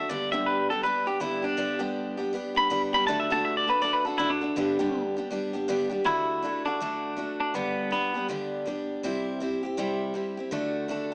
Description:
country; 161 BPM; 4/4; swing 62% on 8ths; G major; A4 = 441 Hz
twangy electric guitar; melody; 0.0-8.3 s; B3 to B5; -26 LUFS; equal
picked steel-string acoustic guitar; accompaniment; 0.0-11.1 s; G2 to A4; -28 LUFS; equal
moderate plate reverb, RT60 2.2 s; rough home demo mix, small speaker sound; -25 LUFS; side -35 dB against mid
0.0-6.1 A section; 6.1-11.1 B section
clean electric guitar solo 0.0-6.1
0.1 G; 3.1 D; 4.6 G; 6.1 D; 7.5 G; 9.0 C; 10.5 D
| 0.09 0.46 0.83 1.21 | 1.58 1.95 2.33 2.70 | 3.07 3.44 3.82 4.19 | 4.56 4.93 5.31 5.68 | 6.05 6.43 6.80 7.17 | 7.54 7.92 8.29 8.66 | 9.04 9.41 9.78 10.15 | 10.53 10.90

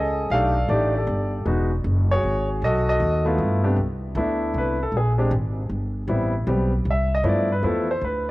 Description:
jazz piano trio; 156 BPM; 3/4; swing 65% on 8ths; C major from 3.8 s; A4 = 441 Hz
warm concert grand piano; melody; 0.0-8.3 s; C3 to F5; -23 LUFS; equal; cassette tape
upright bass; bass; 0.0-8.3 s; E1 to G2; -23 LUFS; equal; tube saturation
light reverb, small room reverb; home recording on cassette; -20 LUFS; side -19 dB against mid
0.0-3.8 A section; 3.8-8.3 B section
grand piano solo 3.8-8.3
0.3 B7alt; 1.5 Eadd9; 2.6 B7; 3.4 G13; 3.8 Cmaj13; 4.9 Bb7(no3); 6.1 Am9; 7.2 G13
| 0.31 0.69 1.08 | 1.46 1.85 2.23 | 2.62 3.00 3.39 | 3.78 4.16 4.55 | 4.93 5.32 5.70 | 6.09 6.47 6.86 | 7.25 7.63 8.02

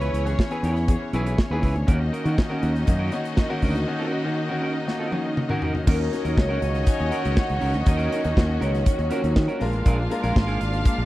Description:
disco; 120 BPM; 4/4; straight; A4 = 440 Hz
vibraphone with medium hard mallets; melody; 0.0-0.4, 5.9-9.6 s; A#4 to G#5; -30 LUFS; right 2 dB
dark studio string section; second line; 0.0-11.1 s; C#4 to E#5; -33 LUFS; equal
clean electric guitar; accompaniment; 0.0-11.0 s; C#4 to B4; -31 LUFS; right 3 dB
clear grand piano; accompaniment; 0.0-11.1 s; D#3 to B4; -30 LUFS; left 2 dB
overdriven fingered electric bass; bass; 0.0-11.1 s; G#1 to D#3; -24 LUFS; equal
modern studio drum kit; drums; 0.0-11.0 s; crash cymbal, hi-hat, kick drum, snare drum, toms; -21 LUFS; equal
rich studio string section; sustained chords; 1.9-11.1 s; D#3 to F#4; -32 LUFS; equal
warm horn section; stabs; 5.9-11.1 s; A#3 to D5; -33 LUFS; left 7 dB
little or no reverb; dry, close 1970s-style studio recording; -20 LUFS; side -16 dB against mid
0.0-5.9 A section; 5.9-11.1 B section
break 3.9-5.9; drum fill 4.9-5.9
0.0 C#m7; 1.9 D#m7; 9.6 A#7
0.39 0.89 1.39 | 1.88 2.38 2.88 3.38 | 3.88 4.38 4.88 5.38 | 5.87 6.37 6.87 7.37 | 7.87 8.37 8.86 9.36 | 9.86 10.36 10.86

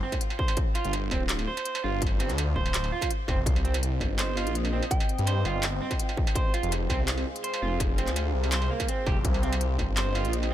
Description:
half-time drum and bass; 166 BPM; 4/4; half-time; C minor; A4 = 438 Hz
electric guitar through a small old amp; arpeggios; 0.0-10.5 s; Bb3 to C5; -33 LUFS; right 4 dB; tape echo
electronic kick drum; drums; 0.1-9.9 s; -28 LUFS; equal; distortion
industrial drum kit; drums; 0.1-10.5 s; handclaps, hi-hat, struck metal; -34 LUFS; right 1 dB
phased detuned saw bass; bass; 0.8-10.5 s; D1 to G2; -28 LUFS; equal; phaser
dark analog pad; sustained chords; 3.8-10.5 s; C4 to G5; -36 LUFS; left 1 dB; chorus, sidechain pumping
soft synth bell; melody; 4.9-5.2 s; G5; -41 LUFS; equal
digital ambience; -25 LUFS; side -12 dB against mid
0.0-10.5 A section
0.0 C5; 0.6 G5; 3.5 Cm; 6.4 Fm; 9.2 Cm
0.21 | 0.57 0.93 1.29 1.66 | 2.02 2.38 2.74 3.10 | 3.46 3.83 4.19 4.55 | 4.91 5.27 5.63 5.99 | 6.36 6.72 7.08 7.44 | 7.80 8.16 8.52 8.88 | 9.25 9.61 9.97 10.33

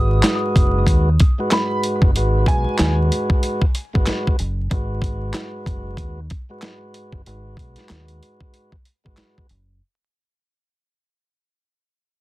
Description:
hip hop, boom-bap hip-hop; 94 BPM; 4/4; swing 58% on 16ths; G# minor; A4 = 440 Hz
warm upright piano; melody; 0.0-3.0 s; G#5 to D#6; -27 LUFS; right 1 dB; high-pass filter, low-pass filter, ping-pong delay
tonewheel organ; accompaniment; 0.0-9.5 s; G#2 to B4; -24 LUFS; equal; stopped rotary speaker, high-pass filter, low-pass filter
deep dub fingered electric bass; bass; 0.0-9.8 s; F#1 to D#2; -20 LUFS; equal
dusty soul sampler-style drum kit; drums; 0.2-9.7 s; handclaps, hi-hat, kick drum, snare drum; -18 LUFS; equal
little or no reverb; dense, heavily limited modern master, vinyl crackle; -16 LUFS; side -18 dB against mid
0.0-9.8 A section
fade-out 0.0-9.8
0.0 G#m7
0.24 0.88 1.52 | 2.16 2.80 3.43 4.07 | 4.71 5.35 5.99 6.62 | 7.26 7.90 8.54 9.18

